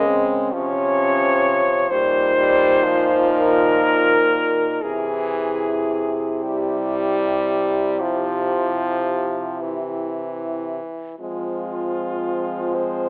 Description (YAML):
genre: classical, lyrical piece for horn quartet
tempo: 37-44 BPM (dotted quarters)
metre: 12/8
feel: rubato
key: unclear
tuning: A4 = 440 Hz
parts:
  - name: warm French horn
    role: melody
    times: 0.0-13.1 s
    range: F4 to Eb5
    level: -21 LUFS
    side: left 1 dB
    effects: none
  - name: mellow French horn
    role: second line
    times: 0.0-13.1 s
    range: C4 to E4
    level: -26 LUFS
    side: right 1 dB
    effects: none
  - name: clear French horn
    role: accompaniment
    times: 0.0-13.1 s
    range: E3 to Ab3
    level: -23 LUFS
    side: equal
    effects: none
  - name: mellow French horn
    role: bass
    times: 0.0-13.1 s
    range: Bb2 to F3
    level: -26 LUFS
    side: equal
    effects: none
room: moderate recital hall reverb, RT60 1.6 s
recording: telephone sound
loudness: -17 LUFS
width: side -28 dB against mid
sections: 0.0-11.2 A section; 11.2-13.1 B section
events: none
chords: 0.0 Db; 1.9 Eb69/Bb; 4.9 C; 11.2 Fm